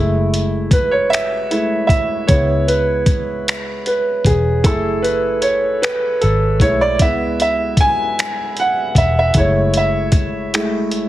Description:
slow six-eight R&B; 51 BPM (dotted quarters); 6/8; straight; F# minor; A4 = 439 Hz
warm concert grand piano; accompaniment; 0.0-11.1 s; G#3 to G#5; -16 LUFS; right 1 dB
vintage muted fingered electric bass; bass; 0.0-11.1 s; E1 to C#2; -20 LUFS; equal
dusty soul sampler-style drum kit; drums; 0.3-11.1 s; finger snaps, hi-hat, kick drum; -17 LUFS; equal
light reverb, digital ambience; heavily compressed radio sound; -14 LUFS; side -14 dB against mid
0.0-11.1 A section
grand piano solo 0.0-11.1
0.0 F#m9; 2.3 C#m7; 4.6 F#m9; 7.0 C#m7; 9.4 F#m9

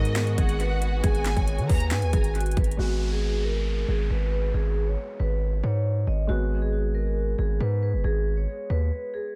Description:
hip hop, trap; 137 BPM; 4/4; half-time; G# minor; A4 = 440 Hz
vibraphone with medium hard mallets; melody; 0.0-9.3 s; F#4 to D#5; -34 LUFS; equal; low-pass filter, analog delay
warm studio violin section; second line; 0.0-2.3 s; D#5 to A#5; -38 LUFS; equal; analog delay
felt-muted upright piano; accompaniment; 0.0-9.4 s; G#3 to F#4; -39 LUFS; equal; low-pass filter
muted studio string section; sustained chords; 0.0-2.8 s; D#3 to F#4; -40 LUFS; equal
hard-hitting 808-style bass; bass; 0.0-8.9 s; F#1 to D#3; -27 LUFS; equal
trap drum kit; drums; 0.1-2.8 s; handclaps, hi-hat, kick drum, snare drum; -28 LUFS; equal
downlifter; sound effects; 2.8-6.3 s; -43 LUFS; equal
small room ambience; echo-heavy mix; -25 LUFS; mono
0.0-2.8 A section; 2.8-9.4 B section
break 8.9-9.4
0.0 G#m7

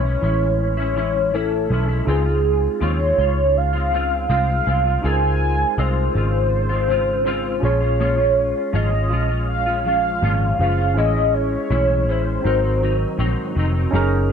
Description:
indie pop, bedroom pop; 81 BPM; 4/4; straight; Db major; A4 = 440 Hz
warm velvety synth lead; melody; 0.0-13.6 s; Ab4 to Ab5; -21 LUFS; right 1 dB; lush chorus, tape echo
barky tine electric piano; accompaniment; 0.0-14.3 s; C4 to G#5; -28 LUFS; right 6 dB; overdrive, cassette tape
semi-hollow electric guitar; accompaniment; 0.0-14.3 s; Ab2 to Bb4; -26 LUFS; left 3 dB; ensemble chorus, warbly pitch drift
vintage muted picked electric bass; bass; 0.0-14.3 s; F1 to Eb2; -21 LUFS; equal
light reverb; -17 LUFS; side -7 dB against mid
0.0-13.9 A section
0.0 Amaj7; 2.1 Dbmaj7; 7.6 Bbm7; 11.0 Amaj7; 12.4 Ab7

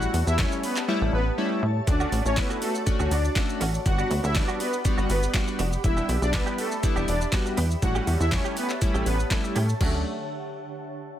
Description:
dance-pop; 121 BPM; 4/4; straight; D major; A4 = 441 Hz
soft supersaw; melody; 0.0-10.0 s; A3 to F#5; -30 LUFS; equal; sidechain pumping
chorused retro synth keys; accompaniment; 0.0-10.0 s; F#3 to F#4; -31 LUFS; left 1 dB; sidechain pumping
glassy FM pad; sustained chords; 0.0-10.0 s; F#4 to B5; -35 LUFS; equal; ensemble chorus, built-in reverb, sidechain pumping
plucky analog bass; bass; 0.0-10.0 s; E1 to A2; -25 LUFS; equal; sidechain pumping
smooth R&B drum kit; drums; 0.0-9.9 s; crash cymbal, handclaps, hi-hat, kick drum, shaker, snare drum; -27 LUFS; equal
direct-recorded clean electric guitar; riff; 1.9-10.0 s; A3 to G4; -34 LUFS; right 7 dB; ensemble chorus
digital ambience; -22 LUFS; side -11 dB against mid
0.0-9.8 A section; 9.8-11.2 B section
drop 0.0-9.8; silent gap 0.9-1.9
0.0 A7; 1.9 Dmaj7; 3.9 Gmaj7; 5.8 Em7; 7.8 A7; 9.8 Dmaj7

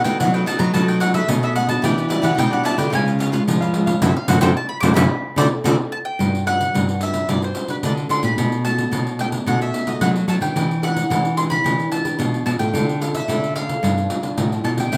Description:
samba and choro; 110 BPM; 4/4; straight; G major from 6.2 s; A4 = 436 Hz
mandolin; melody; 0.0-15.0 s; B4 to D6; -26 LUFS; equal; plate reverb
cavaquinho; accompaniment; 0.0-5.7, 14.9-15.0 s; D#4 to E#5; -28 LUFS; equal; plate reverb
nylon-string guitar; accompaniment; 0.0-15.0 s; G2 to B4; -30 LUFS; equal; plate reverb
nylon-string guitar; bass; 0.0-15.0 s; F#2 to B3; -24 LUFS; equal
pandeiro; percussion; 0.1-15.0 s; -25 LUFS; equal
wet small room reverb, RT60 0.5 s; rough home demo mix; -19 LUFS; mono
0.0-6.2 A section; 6.2-15.0 B section
mandolin solo 0.0-6.2; band accent 4.0-6.2
0.0 B7; 1.8 Em9; 2.9 C#7; 4.0 F#m7b5; 5.1 D7; 6.2 Gmaj7; 8.4 B7; 10.6 Em7; 12.7 Dm7; 13.8 G7

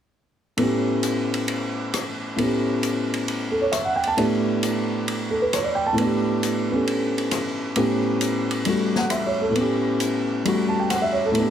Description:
modal jazz; 134 BPM; 4/4; swing 68% on 8ths; A mixolydian; A4 = 442 Hz
warm concert grand piano; accompaniment; 0.6-11.5 s; A2 to A5; -21 LUFS; equal
open jazz drum kit; drums; 0.6-11.5 s; hi-hat, ride cymbal, rim click, snare drum; -28 LUFS; equal
moderate club reverb, RT60 0.8 s; heavily compressed radio sound, multiband compression; -20 LUFS; side -9 dB against mid
0.6-11.5 A section
0.6 A7; 4.2 Gadd9/A; 7.8 A7

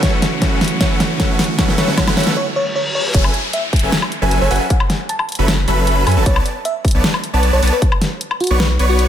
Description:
future bass; 154 BPM; 4/4; half-time; F# minor; A4 = 440 Hz
bell-like FM electric piano; melody; 0.0-9.1 s; F#4 to A5; -23 LUFS; equal; chorus, cassette tape, sidechain pumping, ping-pong delay
clean electric guitar; accompaniment; 0.0-2.4 s; E3 to F#4; -24 LUFS; right 3 dB; sidechain pumping, dub echo
ethereal airy pad; sustained chords; 0.0-2.3 s; D3 to E4; -32 LUFS; right 1 dB
supersaw chords; riff; 0.0-9.1 s; F#3 to C#6; -21 LUFS; right 1 dB; sidechain pumping
big-room dance drum kit; drums; 0.0-9.1 s; crash cymbal, hi-hat, snare drum, woodblock; -19 LUFS; left 1 dB; studio reverb
electronic kick drum; drums; 0.0-7.9 s; -17 LUFS; equal; studio reverb
riser, reverse cymbal and downlifter; sound effects; 0.0-6.3 s; -24 LUFS; left 1 dB
airy dreamy lead; arpeggios; 3.1-9.1 s; G#5 to C#6; -26 LUFS; right 1 dB; chorus, sidechain pumping, dub echo
saturated sub bass; bass; 3.1-9.1 s; F#1 to F#2; -16 LUFS; equal; sidechain pumping
light reverb; -14 LUFS; side -10 dB against mid
0.0-3.1 A section; 3.1-9.1 B section
build-up 0.0-3.1; drum fill 0.0-2.4; riser 0.0-2.4; break 2.4-3.1; reverse cymbal 2.4-3.1; drop 3.1-9.1
0.0 E9sus4; 3.1 F#m11; 6.3 Bm9

